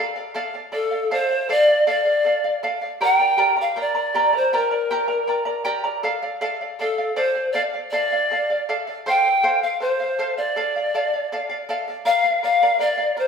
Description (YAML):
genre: andean folk, Andean ensemble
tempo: 80 BPM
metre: 2/4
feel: straight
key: D minor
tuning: A4 = 440 Hz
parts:
  - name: charango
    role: accompaniment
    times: 0.0-13.3 s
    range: G4 to Bb5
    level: -24 LUFS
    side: right 1 dB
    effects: none
  - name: pan flute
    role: melody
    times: 0.7-13.3 s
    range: A4 to G5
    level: -19 LUFS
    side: left 1 dB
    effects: none
room: wet large studio reverb, RT60 1.2 s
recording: band playing live in one room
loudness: -18 LUFS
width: side -6 dB against mid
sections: 0.0-12.1 A section; 12.1-13.3 B section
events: none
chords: 0.0 Dm; 3.0 Gm; 6.0 Dm; 9.1 F; 10.6 Dm; 12.1 Bb